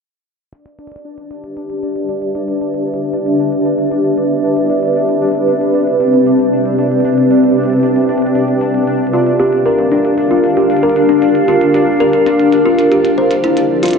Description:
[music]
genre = IDM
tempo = 115 BPM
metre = 4/4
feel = straight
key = E phrygian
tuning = A4 = 440 Hz
[part]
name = granular cloud pad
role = sustained chords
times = 1.7-14.0 s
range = F3 to F5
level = -13 LUFS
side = equal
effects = built-in reverb
[part]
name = electronic hi-hat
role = drums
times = 0.5-14.0 s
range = none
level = -35 LUFS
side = left 1 dB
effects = small room ambience
[part]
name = pulsing gated texture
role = texture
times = 0.8-14.0 s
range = D4 to D5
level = -22 LUFS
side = right 3 dB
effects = chorus, built-in reverb
[part]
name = kalimba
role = arpeggios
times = 9.1-13.9 s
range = D4 to C5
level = -13 LUFS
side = left 1 dB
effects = digital delay
[sound]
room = wet lush hall reverb, RT60 2.0 s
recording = dark, warm production, low-pass filter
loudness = -11 LUFS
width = side -5 dB against mid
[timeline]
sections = 0.5-14.0 A section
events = filter sweep on ambient pad 0.5-14.0; filter sweep 0.5-14.0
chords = 0.5 Em7; 4.7 Cmaj7; 8.9 Gm7; 13.0 Fmaj7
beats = | 0.53 1.05 1.57 2.09 | 2.61 3.13 3.66 4.18 | 4.70 5.22 5.74 6.26 | 6.79 7.31 7.83 8.35 | 8.87 9.39 9.92 10.44 | 10.96 11.48 12.00 12.53 | 13.05 13.57

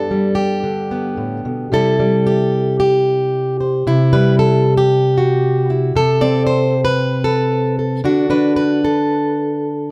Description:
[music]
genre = folk, solo fingerstyle acoustic guitar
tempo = 114 BPM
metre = 4/4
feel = straight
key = unclear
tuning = A4 = 440 Hz
[part]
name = fingerpicked plugged-in steel-string acoustic guitar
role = solo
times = 0.0-9.9 s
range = G2 to D5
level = -16 LUFS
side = equal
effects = none
[sound]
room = moderate large studio reverb, RT60 1.4 s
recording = none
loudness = -16 LUFS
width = mono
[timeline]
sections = 0.0-1.7 A section; 1.7-9.9 B section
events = none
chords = 0.0 Gadd9; 1.7 C; 6.0 Amadd9/C; 8.0 N.C.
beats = 0.11 0.64 1.19 | 1.73 2.27 2.80 3.33 | 3.86 4.38 4.91 5.43 | 5.95 6.47 7.00 7.52 | 8.04 8.56 9.10 9.63

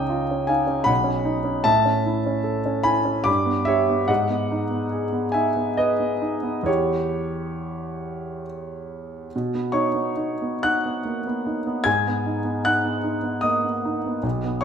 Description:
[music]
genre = classical, impressionist solo piano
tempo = 64-78 BPM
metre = 3/4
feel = rubato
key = unclear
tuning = A4 = 440 Hz
[part]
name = warm grand piano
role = solo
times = 0.0-14.6 s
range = B1 to G#6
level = -21 LUFS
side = equal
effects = none
[sound]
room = moderate recital hall reverb, RT60 1.6 s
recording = minimal, uncompressed stereo recording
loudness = -20 LUFS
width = side -7 dB against mid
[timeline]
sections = 0.0-9.3 A section; 9.3-14.6 B section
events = none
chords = 0.0 C#add9; 0.9 Badd9; 1.7 A; 3.3 G; 4.1 G#m7; 6.7 Em6; 9.3 Badd9; 11.9 G#m7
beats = 0.11 0.90 | 1.69 2.48 3.28 | 4.09 4.91 5.78 | 6.67 7.57 8.46 | 9.33 10.19 11.05 | 11.86 12.66 13.45 | 14.24

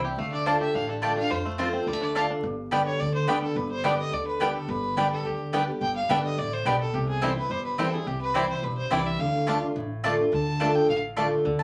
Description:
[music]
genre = bluegrass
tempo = 213 BPM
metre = 4/4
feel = straight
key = unclear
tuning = A4 = 440 Hz
[part]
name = bluegrass banjo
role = melody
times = 0.0-11.6 s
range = D3 to G4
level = -36 LUFS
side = equal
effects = none
[part]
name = picked steel-string acoustic guitar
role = accompaniment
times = 0.0-11.6 s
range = F2 to G4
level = -31 LUFS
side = equal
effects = none
[part]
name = upright bass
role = bass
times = 0.0-11.6 s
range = G1 to F2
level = -37 LUFS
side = equal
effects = none
[part]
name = clear fiddle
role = melody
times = 0.2-11.0 s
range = G4 to A5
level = -33 LUFS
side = equal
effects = none
[part]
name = mandolin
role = stabs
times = 0.5-11.6 s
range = A3 to A5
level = -29 LUFS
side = equal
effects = none
[sound]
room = wet club reverb, RT60 0.5 s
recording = vinyl crackle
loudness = -26 LUFS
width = mono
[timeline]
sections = 0.0-2.4 A section; 2.4-11.5 B section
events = none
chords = 0.2 Dm; 1.3 F; 1.9 Dm; 2.4 G; 6.9 C; 9.2 Dm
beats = | 0.18 0.47 0.75 1.03 | 1.31 1.59 1.88 2.16 | 2.44 2.72 3.00 3.28 | 3.57 3.85 4.13 4.41 | 4.69 4.97 5.25 5.54 | 5.82 6.10 6.38 6.66 | 6.94 7.23 7.51 7.79 | 8.07 8.35 8.63 8.92 | 9.20 9.48 9.76 10.04 | 10.33 10.61 10.89 11.17 | 11.45

